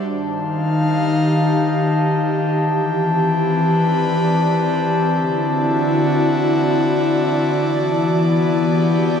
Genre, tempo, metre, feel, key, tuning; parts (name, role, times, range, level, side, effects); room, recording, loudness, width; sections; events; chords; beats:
ambient; 72 BPM; 3/4; straight; A4 = 440 Hz
airy breathy pad; sustained chords; 0.0-9.2 s; D3 to F5; -16 LUFS; equal; chorus, shimmer reverb
glass harmonica; texture; 0.1-9.2 s; A5; -24 LUFS; left 5 dB; shimmer reverb
wet cathedral reverb, RT60 5.6 s; cassette tape; -15 LUFS; side -7 dB against mid
0.1-9.2 A section
0.1 Eb6; 2.6 Cmaj9/E; 5.1 D7; 7.6 Em9
| 0.09 0.92 1.75 | 2.59 3.42 4.25 | 5.09 5.92 6.75 | 7.59 8.42